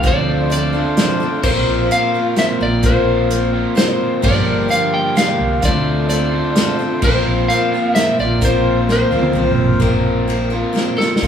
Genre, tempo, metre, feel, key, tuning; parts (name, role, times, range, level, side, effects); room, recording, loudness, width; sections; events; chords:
folk rock and heartland rock; 129 BPM; 3/4; straight; A4 = 439 Hz
lightly driven lead guitar; melody; 0.0-11.3 s; A4 to G5; -19 LUFS; left 1 dB
picked steel-string acoustic guitar; accompaniment; 0.0-11.3 s; G2 to Bb4; -20 LUFS; left 2 dB
accordion; sustained chords; 0.0-11.3 s; F3 to C5; -26 LUFS; right 1 dB
crunchy overdriven guitar; riff; 0.0-11.3 s; G2 to G4; -22 LUFS; right 2 dB
hollow-body short-scale fingered electric bass; bass; 0.0-11.3 s; G1 to D2; -20 LUFS; equal
unplugged drum kit; drums; 0.0-11.3 s; crash cymbal, hi-hat, kick drum, ride cymbal, snare drum, toms; -19 LUFS; equal
moderate studio reverb, RT60 0.7 s; band playing live in one room, small room reverb; -14 LUFS; side -8 dB against mid
0.0-9.8 A section; 9.8-11.2 B section
drum fill 8.9-9.8, 11.0
0.0 Dm7; 1.4 Bbsus2; 4.2 Gm7; 5.6 Dm7; 7.0 Bbsus2